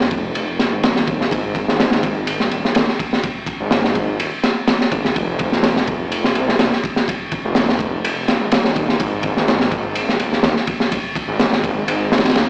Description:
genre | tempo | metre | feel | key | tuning
breakbeat, breaks | 125 BPM | 4/4 | swing 53% on 16ths | unclear | A4 = 438 Hz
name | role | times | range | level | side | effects
detuned saw bass | bass | 0.0-12.5 s | Eb1 to Eb2 | -21 LUFS | equal | tube saturation
crunchy breakbeat drum kit | drums | 0.0-12.5 s | kick drum, ride cymbal, snare drum | -16 LUFS | equal | none
room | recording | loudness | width
moderate studio reverb, RT60 0.6 s | played on a big sound system in a bare room, large studio reverb, vinyl crackle, small speaker sound | -15 LUFS | side -32 dB against mid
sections
0.0-12.5 A section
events
none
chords
none

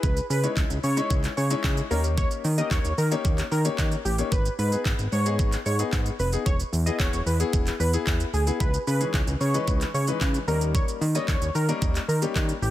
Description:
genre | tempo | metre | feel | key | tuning
dance-pop | 112 BPM | 4/4 | straight | unclear | A4 = 440 Hz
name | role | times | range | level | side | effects
octave-doubled lead | melody | 0.0-12.7 s | G4 to D#5 | -31 LUFS | equal | chorus, sidechain pumping, ping-pong delay
clear baby grand piano | accompaniment | 0.0-12.5 s | E3 to C#5 | -31 LUFS | left 6 dB | none
fat analog bass | bass | 0.0-12.7 s | E1 to D#3 | -25 LUFS | equal | sidechain pumping
pop drum kit | drums | 0.0-12.7 s | handclaps, hi-hat, kick drum, shaker | -27 LUFS | equal | none
room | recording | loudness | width
little or no reverb | none | -22 LUFS | side -14 dB against mid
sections
0.0-12.7 A section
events
none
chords
0.0 C#madd9; 1.9 D#7; 4.3 G#m; 6.5 E; 8.6 C#madd9; 10.5 D#7

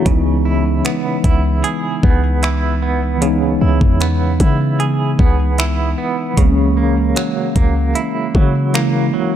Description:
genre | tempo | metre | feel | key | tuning
contemporary R&B | 76 BPM | 4/4 | straight | C# minor | A4 = 440 Hz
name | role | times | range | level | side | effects
mellow tine electric piano | accompaniment | 0.0-9.4 s | E3 to E4 | -19 LUFS | left 1 dB | medium stereo tremolo
direct-recorded clean electric guitar | arpeggios | 0.0-9.4 s | C#3 to G#4 | -21 LUFS | right 6 dB | tremolo, ping-pong delay
clean 808-style bass | bass | 0.1-9.1 s | C#2 to C#3 | -17 LUFS | equal | none
smooth R&B drum kit | drums | 0.1-8.9 s | finger snaps, hi-hat, kick drum | -16 LUFS | equal | none
room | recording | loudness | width
little or no reverb | dark, warm production | -13 LUFS | side -10 dB against mid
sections
0.0-9.4 A section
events
none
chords
0.1 C#m7; 6.4 F#7/C#

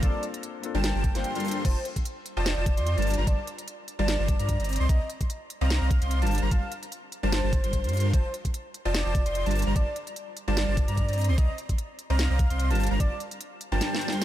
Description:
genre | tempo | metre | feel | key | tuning
future bass | 148 BPM | 4/4 | swing 55% on 16ths, half-time | G minor | A4 = 444 Hz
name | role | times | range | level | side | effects
warm velvety synth lead | melody | 0.0-14.2 s | C5 to G5 | -35 LUFS | equal | chorus, sidechain pumping, ping-pong delay
felt-muted upright piano | accompaniment | 0.0-1.7 s | Bb3 to C5 | -37 LUFS | left 6 dB | sidechain pumping, digital delay
airy dreamy lead | arpeggios | 0.0-14.2 s | A5 to C6 | -37 LUFS | equal | chorus, cassette tape, sidechain pumping, digital delay
dense compressed supersaw | riff | 0.0-14.2 s | G3 to C6 | -33 LUFS | equal | sidechain pumping
saturated sub bass | bass | 0.0-13.8 s | F1 to G2 | -26 LUFS | equal | sidechain pumping
electronic kick drum | drums | 0.0-13.1 s | none | -25 LUFS | equal | studio reverb
trap drum kit | drums | 0.0-14.2 s | crash cymbal, hi-hat, snare drum | -34 LUFS | equal | studio reverb
room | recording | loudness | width
little or no reverb | none | -24 LUFS | side -13 dB against mid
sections
0.0-1.6 A section; 1.6-14.2 A section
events
drop 0.0-1.6, 1.6-14.2; break 1.2-1.6; drum fill 13.8-14.2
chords
0.0 Gm11; 1.6 F7; 3.1 Gm11; 8.1 F7; 9.6 Gm11

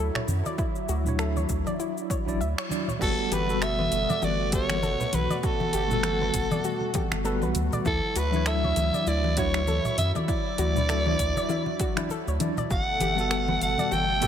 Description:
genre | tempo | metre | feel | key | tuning
sunset chillout | 99 BPM | 4/4 | swing 57% on 16ths | G lydian | A4 = 440 Hz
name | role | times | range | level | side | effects
lush unison pad | sustained chords | 0.0-14.3 s | B2 to A4 | -34 LUFS | equal | chorus
soft round pluck | arpeggios | 0.0-14.3 s | E4 to E5 | -35 LUFS | left 2 dB | chorus, digital delay
round analog bass | bass | 0.0-14.3 s | G1 to F#2 | -28 LUFS | equal | none
congas | percussion | 0.1-14.3 s | none | -34 LUFS | right 2 dB | none
deep house drum kit | drums | 0.2-14.3 s | cabasa, congas, crash cymbal, finger snaps, hi-hat | -32 LUFS | left 3 dB | overdrive
electronic kick drum | drums | 0.6-14.3 s | none | -30 LUFS | equal | overdrive
tine electric piano | accompaniment | 1.0-14.3 s | F#3 to D5 | -32 LUFS | moving between left 6 dB and right 2 dB | medium stereo tremolo, auto-pan, digital delay
raspy soprano saxophone | melody | 3.0-14.3 s | A4 to G5 | -28 LUFS | right 1 dB | digital delay
room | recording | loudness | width
light reverb | none | -23 LUFS | side -9 dB against mid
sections
0.0-3.0 A section; 3.0-14.3 B section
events
band accent 2.6-2.9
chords
0.0 Dmaj9; 3.0 Gmaj9; 7.9 Dmaj9; 12.7 Gmaj9

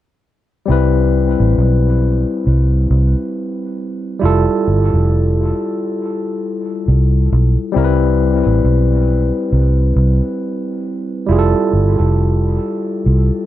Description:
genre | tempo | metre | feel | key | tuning
lovers rock reggae | 68 BPM | 4/4 | swing 59% on 16ths | C major | A4 = 440 Hz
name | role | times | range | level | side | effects
barky tine electric piano | accompaniment | 0.7-13.5 s | G3 to B4 | -17 LUFS | moving between left 9 dB and right 5 dB | overdrive, auto-pan, tape echo
vintage muted fingered electric bass | bass | 0.7-13.3 s | F1 to C2 | -13 LUFS | equal | none
room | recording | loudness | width
light reverb, digital ambience | dark, warm production | -13 LUFS | side -13 dB against mid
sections
0.7-13.5 A section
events
none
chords
0.7 Cmaj7; 4.2 Fmaj9; 7.8 Cmaj7; 11.3 Fmaj9

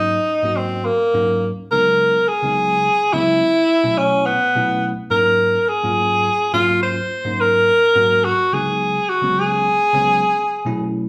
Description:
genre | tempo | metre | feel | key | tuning
jazz | 70 BPM (dotted quarters) | 6/8 | straight | unclear | A4 = 439 Hz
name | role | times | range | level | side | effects
clear tenor saxophone | melody | 0.0-11.1 s | Bb3 to C5 | -18 LUFS | equal | none
bell-like tine electric piano | accompaniment | 0.0-11.1 s | Ab2 to Gb4 | -27 LUFS | equal | none
room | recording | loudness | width
wet large studio reverb, RT60 0.9 s | band playing live in one room | -17 LUFS | mono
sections
0.0-11.1 A section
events
none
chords
0.0 Ab9sus4; 1.7 Db9sus4; 3.4 B9sus4; 5.1 Ab9sus4; 8.5 Db9sus4; 10.2 B9sus4

